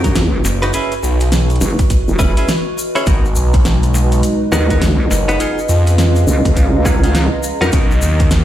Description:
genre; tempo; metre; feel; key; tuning
glitch hop; 103 BPM; 4/4; swing 62% on 16ths; G# minor; A4 = 440 Hz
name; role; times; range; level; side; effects
direct-recorded clean electric guitar; stabs; 0.0-7.9 s; B3 to C#5; -22 LUFS; equal; sidechain pumping, tape echo
vowel-sweep wobble bass; bass; 0.0-7.7 s; E1 to F#2; -14 LUFS; equal; chorus
electronic kick drum; drums; 0.0-8.3 s; none; -14 LUFS; equal; none
pop drum kit; drums; 0.0-8.4 s; hi-hat, snare drum; -22 LUFS; equal; none
egg shaker; percussion; 0.0-8.4 s; none; -28 LUFS; left 4 dB; none
warbly tape-like pad; texture; 0.2-8.4 s; B3 to A#5; -24 LUFS; right 1 dB; chorus, built-in reverb, sidechain pumping
phased detuned saw bass; bass; 0.4-8.4 s; F#1 to E#2; -14 LUFS; equal; phaser, overdrive
dark analog pad; sustained chords; 3.1-8.4 s; G#3 to E#5; -21 LUFS; equal; chorus, sidechain pumping
room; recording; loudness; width
light reverb; played on a big sound system in a bare room, large studio reverb; -12 LUFS; side -12 dB against mid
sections
0.0-8.4 A section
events
none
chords
0.0 Bmaj7; 0.7 F#7sus4; 3.1 G#m7; 5.4 C#7; 7.7 Bmaj7

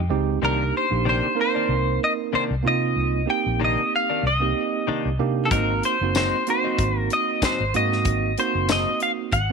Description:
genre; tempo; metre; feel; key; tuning
straight-eighth soul blues; 94 BPM; 4/4; swing 56% on 16ths; C minor; A4 = 440 Hz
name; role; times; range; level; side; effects
direct-recorded clean electric guitar; melody; 0.0-9.5 s; A4 to G5; -23 LUFS; left 2 dB; wide subtle chorus
tine electric piano; accompaniment; 0.0-9.5 s; Ab3 to Bb4; -26 LUFS; right 15 dB; medium stereo tremolo
vintage muted fingered electric bass; bass; 0.0-9.5 s; Gb1 to C3; -25 LUFS; equal; none
direct-recorded clean electric guitar; stabs; 0.4-8.9 s; Ab2 to Eb4; -29 LUFS; left 13 dB; wide subtle chorus
tight funk drum kit; drums; 5.5-9.5 s; hi-hat, kick drum, snare drum, tambourine; -26 LUFS; left 1 dB; none
room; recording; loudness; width
light reverb; 1960s-style stereo with parts hard left and right; -20 LUFS; side -5 dB against mid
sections
0.0-9.5 A section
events
none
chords
0.4 Cm9; 5.5 Ab7

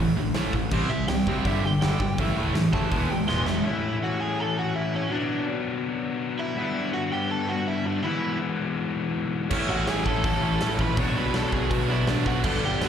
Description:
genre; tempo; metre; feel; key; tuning
punk rock; 164 BPM; 4/4; straight; A major; A4 = 439 Hz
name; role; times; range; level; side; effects
distorted electric guitar; riff; 0.0-12.9 s; G2 to E4; -27 LUFS; left 5 dB; distortion, slapback echo
tight distorted guitar; riff; 0.0-3.6, 9.5-12.9 s; G2 to E4; -28 LUFS; right 11 dB; distortion, slapback echo
fuzz picked electric bass; bass; 0.0-3.6, 9.5-12.9 s; E1 to A2; -29 LUFS; equal; overdrive
big rock drum kit; drums; 0.3-3.5, 9.5-12.9 s; crash cymbal, hi-hat, kick drum, snare drum; -29 LUFS; equal; none
overdriven semi-hollow guitar; melody; 0.9-12.9 s; C#4 to C#6; -30 LUFS; right 3 dB; slapback echo
room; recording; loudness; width
studio reverb; live gig heard through the venue's PA, recital hall reverb; -23 LUFS; side -8 dB against mid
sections
0.0-3.6 A section; 3.6-12.9 B section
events
overdriven electric guitar solo 0.0-3.6; drum fill 3.3-3.6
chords
0.0 A5; 0.7 C5; 1.4 G5; 2.2 A5; 2.9 E; 3.6 A; 5.1 Bm; 6.6 G; 8.0 E/G#; 9.5 A; 11.0 Bm

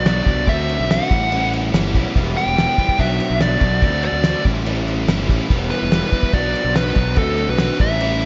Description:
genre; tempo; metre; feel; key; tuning
indie rock; 143 BPM; 4/4; straight; E minor; A4 = 440 Hz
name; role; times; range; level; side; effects
fuzz lead guitar; melody; 0.0-8.3 s; A4 to G5; -24 LUFS; equal; distortion, slapback echo, tape echo
overdriven electric guitar; riff; 0.0-8.3 s; A2 to F#4; -28 LUFS; equal; subtle chorus, slapback echo
raw garage guitar; riff; 0.0-8.3 s; E2 to F#4; -29 LUFS; equal; overdrive, phaser, slapback echo
fuzz fingered electric bass; bass; 0.0-8.3 s; E1 to D2; -25 LUFS; equal; overdrive
cloth-damped thuddy drum kit; drums; 0.1-8.3 s; crash cymbal, kick drum, snare drum; -23 LUFS; equal; none
room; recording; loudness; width
moderate recital hall reverb, RT60 1.4 s, small room reverb; big arena sound, nothing above 7.7 kHz; -18 LUFS; mono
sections
0.0-8.3 A section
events
none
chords
0.5 D5; 1.1 A7; 2.1 Em; 3.0 Bm; 3.8 D5; 4.5 A7; 5.5 Em; 6.3 Bm; 7.2 D5

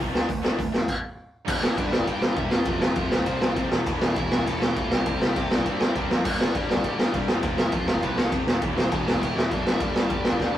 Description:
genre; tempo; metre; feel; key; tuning
punk rock; 202 BPM; 4/4; straight; G mixolydian; A4 = 440 Hz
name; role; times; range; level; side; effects
cranked stack guitar; riff; 0.0-10.6 s; E2 to D4; -32 LUFS; left 7 dB; overdrive
tight distorted guitar; riff; 0.0-10.6 s; E2 to D4; -33 LUFS; right 6 dB; distortion
fuzz picked electric bass; bass; 0.0-10.6 s; E1 to C3; -33 LUFS; equal; overdrive
raw garage drum kit; drums; 0.1-10.6 s; crash cymbal, hi-hat, kick drum, ride cymbal, snare drum, toms; -23 LUFS; equal; none
distorted electric guitar; riff; 1.5-10.6 s; E2 to C4; -38 LUFS; right 1 dB; none
high-gain lead guitar; melody; 1.6-10.6 s; B3 to B5; -33 LUFS; equal; distortion
room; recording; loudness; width
light reverb; rough rehearsal-room recording, warm saturation; -22 LUFS; side -12 dB against mid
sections
0.0-1.5 A section; 1.5-10.6 B section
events
stop 0.9-1.5; drum fill 10.4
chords
0.1 D5; 1.5 G; 2.5 F5; 3.7 Em; 4.9 C5; 6.2 G; 7.3 F; 8.5 Em; 9.7 G5

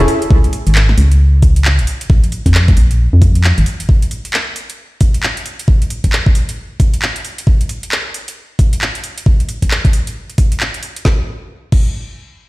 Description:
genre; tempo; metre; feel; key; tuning
UK garage, two-step garage; 134 BPM; 4/4; swing 62% on 16ths; unclear; A4 = 440 Hz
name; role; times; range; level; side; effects
organ-like FM bass; bass; 0.0-3.6 s; G#1 to E#2; -10 LUFS; equal; sidechain pumping
garage drum kit; drums; 0.0-11.9 s; crash cymbal, handclaps, hi-hat, snare drum; -20 LUFS; equal; overdrive
electronic kick drum; drums; 0.3-11.9 s; none; -11 LUFS; equal; overdrive
room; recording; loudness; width
digital ambience; played on a big sound system in a bare room, stone room reverb; -11 LUFS; side -20 dB against mid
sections
0.0-11.1 A section; 11.1-12.5 B section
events
none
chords
none

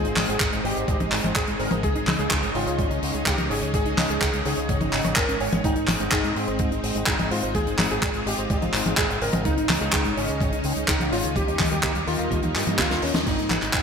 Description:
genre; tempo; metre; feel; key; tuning
italo disco; 126 BPM; 4/4; straight; Ab major; A4 = 443 Hz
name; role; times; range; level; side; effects
warm electric grand piano; melody; 0.0-13.8 s; C4 to Db5; -29 LUFS; equal; ensemble chorus, digital delay
string machine, full ensemble; sustained chords; 0.0-13.8 s; G3 to F4; -30 LUFS; equal; ensemble chorus
soft round pluck; arpeggios; 0.0-13.3 s; G3 to Ab5; -34 LUFS; right 3 dB; chorus, cassette tape, digital delay
fingered electric bass with an envelope filter; bass; 0.0-13.8 s; Ab1 to Ab2; -30 LUFS; equal; none
tight funk drum kit; drums; 0.0-13.8 s; crash cymbal, handclaps, hi-hat, snare drum, toms; -25 LUFS; equal; gated reverb
mellow synth brass; stabs; 0.2-13.6 s; Db3 to Eb5; -33 LUFS; left 3 dB; chorus, cassette tape
electronic kick drum; drums; 0.4-13.8 s; none; -27 LUFS; equal; none
room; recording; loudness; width
moderate lush hall reverb, RT60 1.9 s, small room ambience; bright 1980s-style digital production; -21 LUFS; side -6 dB against mid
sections
0.0-13.3 A section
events
drum fill 12.8-13.3; band accent 13.1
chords
0.0 Ab; 1.8 Dbsus2; 5.6 Ab; 9.5 Dbsus2; 11.4 Eb; 13.3 Ab

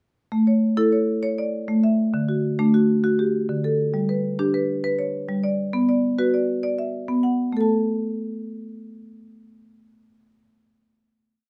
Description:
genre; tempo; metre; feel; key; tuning
southern african traditional, mbira-style interlocking cycle; 134 BPM (dotted quarters); 12/8; straight; A mixolydian; A4 = 440 Hz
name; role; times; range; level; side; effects
marimba with hard mallets; solo; 0.3-11.5 s; D3 to A5; -22 LUFS; equal; none
room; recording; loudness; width
wet studio ambience, RT60 0.5 s; rough home demo mix; -22 LUFS; mono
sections
0.3-7.5 A section; 7.5-11.1 final note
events
none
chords
0.3 A; 2.1 D; 3.9 G; 5.7 Bm; 7.5 N.C.

